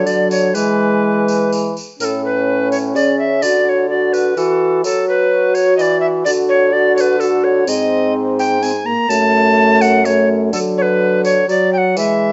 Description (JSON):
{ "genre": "classical, renaissance-style consort dance", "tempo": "126 BPM", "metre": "3/4", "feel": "straight", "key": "unclear", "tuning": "A4 = 440 Hz", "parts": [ { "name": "tenor recorder", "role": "melody", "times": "0.0-12.3 s", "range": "A4 to A#5", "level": "-18 LUFS", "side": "equal", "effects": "none" }, { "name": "clear trombone", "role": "accompaniment", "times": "0.0-12.3 s", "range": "F#3 to F#4", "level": "-19 LUFS", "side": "equal", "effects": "none" }, { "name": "mellow bassoon", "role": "bass", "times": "0.0-12.3 s", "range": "F#2 to F#3", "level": "-21 LUFS", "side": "equal", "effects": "none" }, { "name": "tambourine", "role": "percussion", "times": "0.1-12.2 s", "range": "none", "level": "-32 LUFS", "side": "equal", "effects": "none" } ], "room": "moderate stone room reverb, RT60 1.0 s", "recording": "nothing above 7.7 kHz", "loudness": "-15 LUFS", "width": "mono", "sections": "0.0-2.0 A section; 2.0-12.3 B section", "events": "none", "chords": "0.0 D; 0.5 E; 2.0 A; 3.4 D; 4.8 Esus2; 6.3 D; 7.7 G#; 9.1 F#m; 10.5 D" }